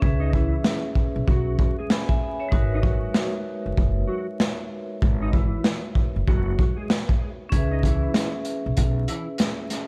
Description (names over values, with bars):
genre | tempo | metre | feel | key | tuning
hip hop, boom-bap hip-hop | 96 BPM | 4/4 | swing 62% on 16ths | G# minor | A4 = 440 Hz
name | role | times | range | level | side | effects
vibraphone with hard mallets | accompaniment | 0.0-9.9 s | G#3 to B5 | -33 LUFS | equal | cassette tape, high-pass filter, low-pass filter
upright bass | bass | 0.0-9.0 s | F#1 to C#2 | -27 LUFS | equal | none
crunchy breakbeat drum kit | drums | 0.0-9.9 s | hi-hat, kick drum, snare drum | -25 LUFS | equal | none
mellow electric guitar | melody | 0.2-9.3 s | E3 to D#5 | -35 LUFS | equal | ensemble chorus, high-pass filter, low-pass filter, digital delay
room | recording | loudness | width
studio reverb | dark, warm production, vinyl crackle | -24 LUFS | mono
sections
0.0-9.9 A section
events
break 0.0-7.5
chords
0.0 C#m7; 2.5 G#m7; 7.5 C#m7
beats
| 0.02 0.65 1.27 1.90 | 2.52 3.15 3.77 4.39 | 5.02 5.64 6.27 6.89 | 7.52 8.14 8.77 9.39